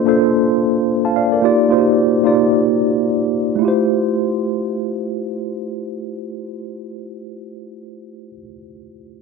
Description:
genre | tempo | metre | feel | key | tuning
amapiano | free time | none | none | F major | A4 = 436 Hz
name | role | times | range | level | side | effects
mellow tine electric piano | accompaniment | 0.0-9.2 s | A3 to A5 | -16 LUFS | equal | medium stereo tremolo
room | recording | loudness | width
light reverb | dark, warm production | -15 LUFS | side -4 dB against mid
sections
0.0-3.6 A section; 3.6-8.0 B section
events
drop 0.0-3.6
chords
0.0 Bbmaj9; 1.4 Ebmaj9; 3.6 Fmaj9

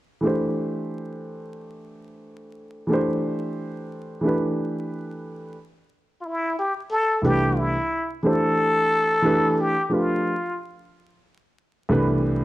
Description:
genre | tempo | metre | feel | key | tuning
hip hop | 90 BPM | 4/4 | swing 62% on 16ths | C major | A4 = 440 Hz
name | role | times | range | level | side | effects
dark baby grand piano | accompaniment | 0.2-12.4 s | C2 to C5 | -23 LUFS | right 1 dB | none
trumpet with plunger mute | melody | 6.2-10.6 s | E4 to A4 | -22 LUFS | left 1 dB | slapback echo
room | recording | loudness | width
moderate echo chamber reverb, RT60 1.3 s, small room ambience | dark, warm production, vinyl crackle | -20 LUFS | side -16 dB against mid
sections
0.2-5.6 A section; 5.6-12.4 B section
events
none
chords
0.2 C69; 4.2 Gadd9; 5.6 Cmaj13; 8.2 Dsus2; 9.6 G9; 10.9 Cmaj13

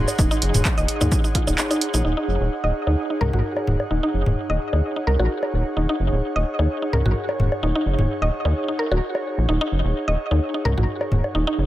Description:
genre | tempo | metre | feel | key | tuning
minimal techno | 129 BPM | 4/4 | swing 54% on 16ths | Eb dorian | A4 = 436 Hz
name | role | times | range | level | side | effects
rubbery square bass | bass | 0.0-11.7 s | Eb1 to Eb2 | -21 LUFS | equal | sidechain pumping
airy breathy pad | texture | 0.0-11.7 s | Eb4 to C6 | -28 LUFS | right 1 dB | chorus, sidechain pumping
bubbling stepped-filter texture | texture | 0.0-2.1 s | Db5 | -37 LUFS | left 1 dB | none
punchy analog drum machine | drums | 0.1-2.0 s | handclaps, hi-hat, shaker | -26 LUFS | right 2 dB | low-pass filter on snare, low-pass filter on perc, low-pass filter on hats, low-pass filter on room
electronic woodblock and toms | percussion | 0.1-11.3 s | none | -25 LUFS | left 1 dB | dub echo
mallet-like synth pluck | riff | 0.2-11.5 s | Eb4 to Eb5 | -26 LUFS | equal | chorus, cassette tape, sidechain pumping, dub echo
electronic kick drum | drums | 0.2-1.4 s | none | -21 LUFS | equal | none
room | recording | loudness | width
light reverb, digital ambience | echo-heavy mix | -19 LUFS | side -14 dB against mid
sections
0.0-2.0 A section; 2.0-11.7 B section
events
kick drops out 1.6-2.0; filter sweep on synth arpeggio sound 2.0-11.7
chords
0.0 Ebm7

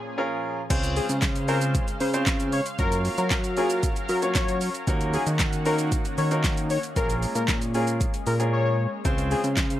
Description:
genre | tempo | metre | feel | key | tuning
dance-pop | 115 BPM | 4/4 | straight | Db major | A4 = 436 Hz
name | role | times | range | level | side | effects
lush unison pad | sustained chords | 0.0-9.8 s | Bb2 to F5 | -34 LUFS | left 1 dB | chorus, sidechain pumping
clear baby grand piano | accompaniment | 0.2-9.5 s | Bb3 to Db5 | -29 LUFS | right 1 dB | sidechain pumping, plate reverb
fat analog bass | bass | 0.7-9.8 s | Bb1 to Gb3 | -26 LUFS | equal | sidechain pumping
deep house drum kit | drums | 0.7-9.8 s | crash cymbal, handclaps, hi-hat, kick drum, shaker, snare drum | -26 LUFS | equal | none
octave-doubled lead | melody | 1.0-9.4 s | Ab4 to Db5 | -30 LUFS | left 4 dB | chorus, plate reverb, ping-pong delay
group handclap | percussion | 1.2-9.7 s | none | -36 LUFS | left 4 dB | none
room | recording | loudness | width
little or no reverb | none | -22 LUFS | side -13 dB against mid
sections
0.7-9.8 A section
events
break 0.0-0.7; drop 0.7-9.8; silent gap 8.5-9.1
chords
0.0 Bbm7; 0.7 Dbmaj7; 2.8 Gbmaj7; 4.9 Ebm7; 7.0 Bbm7; 9.1 Dbmaj7

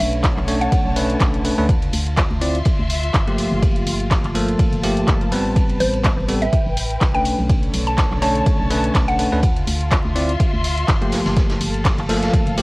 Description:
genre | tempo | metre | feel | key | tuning
deep house | 124 BPM | 4/4 | swing 55% on 16ths | unclear | A4 = 440 Hz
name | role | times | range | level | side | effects
mallet-like synth pluck | melody | 0.0-1.1, 5.8-9.5 s | C5 to A5 | -24 LUFS | equal | wide subtle chorus, analog delay
bell-like tine electric piano | stabs | 0.0-12.6 s | F3 to D5 | -22 LUFS | equal | fast stereo tremolo, sidechain pumping, cassette tape
organ-like FM bass | bass | 0.0-12.6 s | G1 to D2 | -24 LUFS | equal | tube saturation, sidechain pumping
loose indie drum kit | drums | 0.0-12.6 s | ride cymbal, snare drum | -33 LUFS | equal | sidechain pumping on cymbals, high-pass filter on cymbals, cassette tape, high-pass filter on snare, high-pass filter on room
punchy analog drum machine | drums | 0.0-12.6 s | handclaps, hi-hat | -25 LUFS | equal | cassette tape
muted studio string section | texture | 0.0-12.6 s | D3 to C6 | -28 LUFS | left 1 dB | sidechain pumping, cassette tape
electronic kick drum | drums | 0.2-12.4 s | none | -19 LUFS | equal | overdrive, cassette tape
room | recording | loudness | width
light reverb, small room reverb | home recording on cassette, vinyl crackle | -16 LUFS | side -23 dB against mid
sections
0.0-12.6 A section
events
none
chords
0.0 Bm9; 1.7 Dm9; 3.4 Gm9; 5.6 Am9; 7.3 Bm9; 9.4 Dm9; 11.1 Gm9

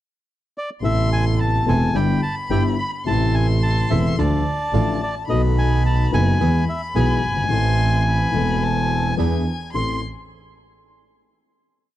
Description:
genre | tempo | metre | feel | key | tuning
tango | 108 BPM | 4/4 | rubato | A harmonic minor | A4 = 440 Hz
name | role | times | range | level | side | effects
bandoneon | melody | 0.6-10.0 s | D5 to C6 | -25 LUFS | equal | none
dark violin | second line | 0.8-10.0 s | G#5 to C6 | -29 LUFS | left 2 dB | none
dark baby grand piano | accompaniment | 0.8-10.0 s | E1 to A4 | -23 LUFS | left 5 dB | none
bandoneon | stabs | 0.8-10.0 s | B3 to A4 | -31 LUFS | right 7 dB | none
warm double bass | bass | 0.8-10.0 s | E1 to E2 | -20 LUFS | right 2 dB | none
room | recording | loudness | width
small room ambience | dry, close 1970s-style studio recording | -17 LUFS | side -13 dB against mid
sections
0.0-0.8 pickup bar; 0.8-9.7 A section; 9.7-12.0 final chord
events
none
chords
0.0 N.C.; 0.8 Amadd9; 1.9 Em7/G; 3.1 Am; 4.2 Dm; 5.3 B7; 6.4 E; 7.5 Am; 9.2 E7; 9.7 Am

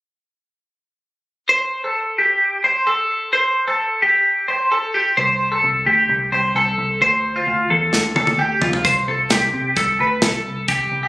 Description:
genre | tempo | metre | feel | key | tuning
jangly indie pop | 131 BPM | 4/4 | straight | unclear | A4 = 441 Hz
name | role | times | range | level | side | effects
twelve-string electric guitar | arpeggios | 1.5-11.1 s | F4 to C5 | -16 LUFS | equal | phaser, tape echo
vintage muted picked electric bass | bass | 5.2-11.1 s | C2 to C3 | -26 LUFS | equal | none
modern studio drum kit | drums | 7.9-10.8 s | hi-hat, kick drum, snare drum, toms | -19 LUFS | equal | none
room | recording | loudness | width
moderate booth ambience, RT60 0.2 s | recorded on a phone in the room, studio reverb | -15 LUFS | side -18 dB against mid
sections
1.5-8.8 A section; 8.8-11.1 B section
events
drum fill 7.9-8.8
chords
1.5 C5; 5.2 Am7/C; 7.0 Dm7; 8.8 Am7/C

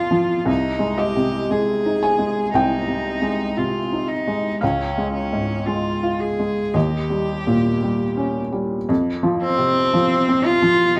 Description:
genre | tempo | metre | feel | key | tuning
neoclassical piano and strings | 57 BPM | 4/4 | rubato | F minor | A4 = 440 Hz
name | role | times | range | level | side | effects
rich cello | second line | 0.0-11.0 s | C4 to Ab4 | -24 LUFS | equal | none
felt-muted upright piano | accompaniment | 0.0-11.0 s | C2 to Ab5 | -22 LUFS | equal | none
room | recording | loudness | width
moderate studio reverb, RT60 0.7 s | band playing live in one room | -20 LUFS | mono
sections
0.0-8.9 A section; 8.9-11.0 A section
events
none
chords
0.5 Ab/C; 4.6 Db; 6.7 Eb7; 8.9 F5

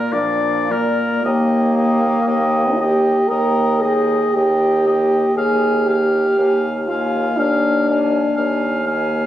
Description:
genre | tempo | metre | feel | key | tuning
classical, slow romantic movement for wind quintet | 53-61 BPM | 4/4 | rubato | Eb major | A4 = 441 Hz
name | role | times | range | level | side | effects
mellow hollow silver concert flute | melody | 0.0-9.3 s | D5 to Ab5 | -25 LUFS | equal | none
clear oboe | second line | 0.0-9.3 s | Bb4 to F5 | -24 LUFS | left 2 dB | none
clear French horn | accompaniment | 0.0-8.9 s | F3 to Bb4 | -18 LUFS | equal | none
dark clarinet | accompaniment | 0.0-9.3 s | Bb3 to F4 | -25 LUFS | equal | none
mellow bassoon | bass | 0.1-9.2 s | Eb2 to Bb2 | -22 LUFS | equal | none
room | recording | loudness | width
moderate scoring stage reverb, RT60 1.5 s | recorded on a phone in the room, club reverb | -15 LUFS | side -12 dB against mid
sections
0.0-1.2 A section; 1.2-9.3 B section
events
none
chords
0.0 Bb; 1.2 Eb; 5.4 Bb7/Eb

